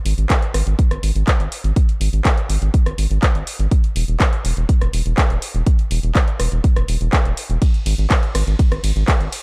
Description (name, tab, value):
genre	progressive house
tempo	123 BPM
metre	4/4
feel	straight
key	unclear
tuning	A4 = 437 Hz
part	round analog bass	bass	0.1-9.3 s	E1 to G#1	-21 LUFS	equal	sidechain pumping
part	deep house drum kit	drums	0.1-9.4 s	handclaps, hi-hat, ride cymbal, rim click	-26 LUFS	equal	sidechain pumping on hats, sidechain pumping on cymbals
part	electronic kick drum	drums	0.3-9.2 s	none	-18 LUFS	equal	none
room	little or no reverb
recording	dark, warm production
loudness	-18 LUFS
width	mono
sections	0.0-9.4 A section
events	none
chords	none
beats	0.30 0.79 1.27 | 1.76 2.25 2.74 3.23 | 3.71 4.20 4.69 5.18 | 5.67 6.15 6.64 7.13 | 7.62 8.10 8.59 9.08